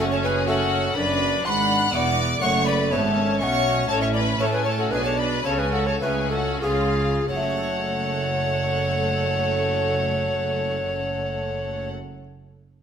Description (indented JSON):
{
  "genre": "classical, baroque-style concerto movement with solo episodes",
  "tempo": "89-123 BPM",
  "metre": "3/4",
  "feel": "straight",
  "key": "F# minor",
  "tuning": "A4 = 439 Hz",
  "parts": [
    { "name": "alto recorder", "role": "melody", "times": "0.0-11.9 s", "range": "G#4 to B#5", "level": "-26 LUFS", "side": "left 2 dB", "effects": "none" },
    { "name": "clear chamber violin section", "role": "melody", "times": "0.0-11.9 s", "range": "E#5 to F#6", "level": "-28 LUFS", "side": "left 3 dB", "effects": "none" },
    { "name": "clear studio violin section", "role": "second line", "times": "0.0-11.9 s", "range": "E#4 to F#5", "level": "-30 LUFS", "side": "left 4 dB", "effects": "none" },
    { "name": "harpsichord", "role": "accompaniment", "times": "0.0-12.2 s", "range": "C#2 to C#5", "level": "-32 LUFS", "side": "equal", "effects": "none" },
    { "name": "rich symphonic viola section", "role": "accompaniment", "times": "0.0-11.9 s", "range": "A3 to E#4", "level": "-30 LUFS", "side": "right 2 dB", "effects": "none" },
    { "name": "rich chamber cello section", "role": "bass", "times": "0.0-11.9 s", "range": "C#2 to A3", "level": "-30 LUFS", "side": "right 3 dB", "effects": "none" },
    { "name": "rich chamber double bass section", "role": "bass", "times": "0.0-11.9 s", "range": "E1 to A2", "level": "-28 LUFS", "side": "right 4 dB", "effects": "none" }
  ],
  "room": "wet recital hall reverb, RT60 1.4 s",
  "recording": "minimal, uncompressed stereo recording",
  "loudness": "-20 LUFS",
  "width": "side -8 dB against mid",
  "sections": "0.0-7.3 A section; 7.3-11.3 B section",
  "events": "slowing down 3.2-7.3",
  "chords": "0.0 F#m; 1.0 Bm/F#; 2.4 F#m; 3.9 F#m/A; 4.9 G#dim/B; 5.5 F#m/C#; 6.6 C#7; 7.3 F#m"
}